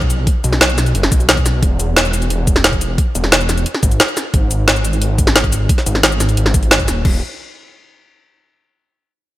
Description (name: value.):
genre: dark technical drum and bass.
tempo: 177 BPM.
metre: 4/4.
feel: straight.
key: unclear.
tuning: A4 = 440 Hz.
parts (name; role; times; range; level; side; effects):
snarling distorted saw bass; bass; 0.0-7.2 s; Eb1 to B1; -17 LUFS; equal; distortion, overdrive, sidechain pumping.
drum and bass drum kit; drums; 0.0-7.1 s; cabasa, crash cymbal, hi-hat, snare drum; -15 LUFS; equal; overdrive, studio reverb.
electronic kick drum; drums; 0.0-7.1 s; none; -16 LUFS; equal; overdrive, studio reverb.
room: light reverb.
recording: none.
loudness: -12 LUFS.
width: side -16 dB against mid.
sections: 0.0-7.0 A section; 7.0-8.4 B section.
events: none.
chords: none.